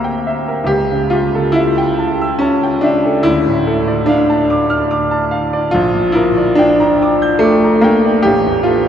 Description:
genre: classical, romantic nocturne for solo piano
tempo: 72 BPM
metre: 3/4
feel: rubato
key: D minor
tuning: A4 = 444 Hz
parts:
  - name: clear grand piano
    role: solo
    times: 0.0-8.9 s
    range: A1 to G6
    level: -11 LUFS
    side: equal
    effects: none
room: wet cathedral reverb, RT60 6.2 s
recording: dark, warm production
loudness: -11 LUFS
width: side -9 dB against mid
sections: 0.0-8.9 A section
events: none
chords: 0.0 Em7b5/D; 0.7 A7/C#; 3.3 Dm; 5.8 Gm/Bb; 8.3 A5

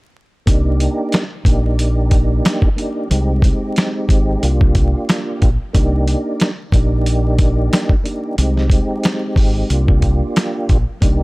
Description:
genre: hip hop, boom-bap hip-hop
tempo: 91 BPM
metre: 4/4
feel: swing 55% on 16ths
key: C minor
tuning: A4 = 440 Hz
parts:
  - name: mellow tonewheel organ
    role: accompaniment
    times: 0.5-11.2 s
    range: Ab3 to G4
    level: -21 LUFS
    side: right 1 dB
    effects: chorus vibrato, slow rotary speaker, cassette tape
  - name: deep dub fingered electric bass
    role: bass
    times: 0.5-11.2 s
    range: Ab1 to C2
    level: -16 LUFS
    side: equal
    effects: none
  - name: dusty soul sampler-style drum kit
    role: drums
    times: 0.5-11.2 s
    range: hi-hat, kick drum, snare drum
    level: -15 LUFS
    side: equal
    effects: none
room: digital ambience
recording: dark, warm production, vinyl crackle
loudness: -14 LUFS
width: side -23 dB against mid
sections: 0.5-11.2 A section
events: none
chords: 0.5 Cm9; 3.1 Abmaj7; 4.4 Gm7/C; 5.7 Cm9; 8.4 Abmaj7; 9.7 Gm7/C

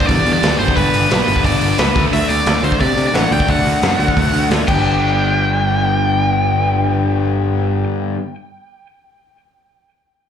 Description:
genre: punk rock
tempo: 176 BPM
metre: 4/4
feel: straight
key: G major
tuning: A4 = 440 Hz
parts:
  - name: high-gain lead guitar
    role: melody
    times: 0.0-7.8 s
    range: B4 to G5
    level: -19 LUFS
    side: left 1 dB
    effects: distortion, slapback echo, ping-pong delay
  - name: crunchy overdriven guitar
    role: riff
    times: 0.0-8.2 s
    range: G2 to D4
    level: -22 LUFS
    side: right 12 dB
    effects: slapback echo
  - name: distorted electric guitar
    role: riff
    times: 0.0-8.2 s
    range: G2 to D4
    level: -21 LUFS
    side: left 12 dB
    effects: distortion, slapback echo
  - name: high-gain distorted guitar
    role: riff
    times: 0.0-2.1 s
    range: G2 to D4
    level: -24 LUFS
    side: right 1 dB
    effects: distortion, slapback echo
  - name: growling picked electric bass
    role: bass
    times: 0.0-7.8 s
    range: G1 to C3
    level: -18 LUFS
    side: equal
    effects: overdrive
  - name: raw garage drum kit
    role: drums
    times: 0.0-4.8 s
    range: crash cymbal, hi-hat, kick drum, snare drum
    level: -20 LUFS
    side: equal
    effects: none
room: light reverb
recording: live gig heard through the venue's PA, club reverb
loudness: -13 LUFS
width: side -8 dB against mid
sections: 0.0-4.8 A section; 4.8-7.6 B section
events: drum fill 4.7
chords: 0.0 G; 1.9 D; 4.7 G

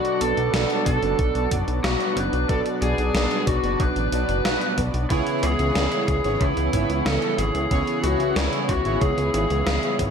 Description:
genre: synthwave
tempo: 92 BPM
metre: 4/4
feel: straight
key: unclear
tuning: A4 = 442 Hz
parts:
  - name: lead guitar through a small cranked amp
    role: melody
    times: 0.0-10.0 s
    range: E4 to B4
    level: -24 LUFS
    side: left 1 dB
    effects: overdrive, vintage 12-bit sampler grit, ping-pong delay
  - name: warm analog pad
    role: sustained chords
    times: 0.0-10.1 s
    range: C#3 to E4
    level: -30 LUFS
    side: equal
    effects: chorus, tremolo, sidechain pumping
  - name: analog synth brass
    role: stabs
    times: 0.0-10.1 s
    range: B2 to G#5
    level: -28 LUFS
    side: right 4 dB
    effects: chorus
  - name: gated 80s digital drum machine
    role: drums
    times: 0.0-10.1 s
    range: hi-hat, snare drum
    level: -28 LUFS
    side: equal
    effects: gated reverb, gated reverb snare
  - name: chorused synth bass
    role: bass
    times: 0.2-10.1 s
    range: F#1 to C#2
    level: -25 LUFS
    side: equal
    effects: none
  - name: electronic kick drum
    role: drums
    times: 0.9-10.1 s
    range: none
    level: -25 LUFS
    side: equal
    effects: none
room: light reverb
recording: none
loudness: -20 LUFS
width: side -6 dB against mid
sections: 0.0-10.1 A section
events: none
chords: 0.0 Bm; 5.1 C#m7

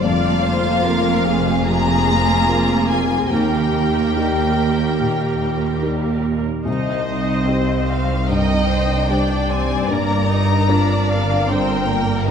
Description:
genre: cinematic, emotional film score for orchestra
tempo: 73 BPM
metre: 4/4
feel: uneven beats, rubato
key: C minor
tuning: A4 = 438 Hz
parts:
  - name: warm symphonic violin section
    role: melody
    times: 0.0-12.3 s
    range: D5 to Bb5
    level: -23 LUFS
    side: left 4 dB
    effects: none
  - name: warm symphonic violin section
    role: second line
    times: 0.0-12.3 s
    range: G4 to Eb5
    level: -25 LUFS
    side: left 1 dB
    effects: none
  - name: felt-muted upright piano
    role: accompaniment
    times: 0.0-12.3 s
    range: C2 to C5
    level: -24 LUFS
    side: left 2 dB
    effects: none
  - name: rich studio viola section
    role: accompaniment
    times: 0.0-12.3 s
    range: Bb3 to D5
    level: -23 LUFS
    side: right 2 dB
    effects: none
  - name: concert harp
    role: arpeggios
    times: 0.0-12.3 s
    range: F2 to C5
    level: -26 LUFS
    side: left 6 dB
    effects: none
  - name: rich symphonic cello section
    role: bass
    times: 0.0-12.3 s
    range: C2 to G2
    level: -24 LUFS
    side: right 4 dB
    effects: none
  - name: rich symphonic double bass section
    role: bass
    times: 0.0-12.3 s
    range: F1 to Eb2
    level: -24 LUFS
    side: right 3 dB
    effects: none
room: wet scoring stage reverb, RT60 1.9 s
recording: none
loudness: -16 LUFS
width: side -7 dB against mid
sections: 0.0-12.3 A section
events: none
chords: 0.0 Bbsus2/F; 3.3 Eb; 6.7 Cmadd9; 9.9 Gm7

